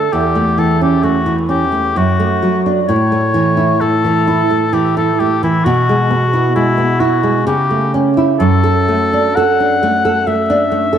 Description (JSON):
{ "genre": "romantic duo for oboe and classical guitar", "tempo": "65 BPM", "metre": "3/4", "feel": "rubato", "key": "D major", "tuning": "A4 = 440 Hz", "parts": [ { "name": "warm oboe", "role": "melody", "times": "0.0-11.0 s", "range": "E4 to F#5", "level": "-16 LUFS", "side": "left 4 dB", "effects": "ping-pong delay" }, { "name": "nylon-string guitar", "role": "accompaniment", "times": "0.0-11.0 s", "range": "E2 to A4", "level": "-13 LUFS", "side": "right 2 dB", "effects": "wide subtle chorus" } ], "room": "moderate plate reverb, RT60 2.6 s", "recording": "dreamy mix soaked in reverb, vinyl crackle", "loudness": "-11 LUFS", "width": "side -9 dB against mid", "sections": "0.0-11.0 A section", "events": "none", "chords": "0.1 A/E; 2.0 D/F#; 2.9 A; 5.7 E/B; 7.5 A/C#; 8.4 D/F#" }